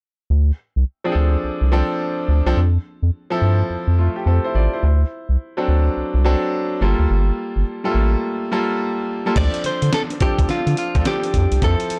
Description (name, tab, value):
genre	R&B, new jack swing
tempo	106 BPM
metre	4/4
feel	swing 63% on 16ths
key	unclear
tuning	A4 = 440 Hz
part	round analog bass	bass	0.3-12.0 s	G1 to F3	-19 LUFS	equal	none
part	bright concert grand piano	accompaniment	1.0-12.0 s	F3 to D5	-24 LUFS	equal	none
part	direct-recorded clean electric guitar	melody	9.4-12.0 s	F4 to D5	-25 LUFS	equal	none
part	dusty soul sampler-style drum kit	drums	9.4-12.0 s	crash cymbal, hi-hat, kick drum, snare drum	-24 LUFS	equal	none
room	little or no reverb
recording	dark, warm production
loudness	-19 LUFS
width	mono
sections	0.3-9.4 A section; 9.4-12.0 B section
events	break 8.2-9.4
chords	0.3 Dm7; 2.6 Fmaj7; 4.8 D7; 6.8 Gm9; 9.4 Dm7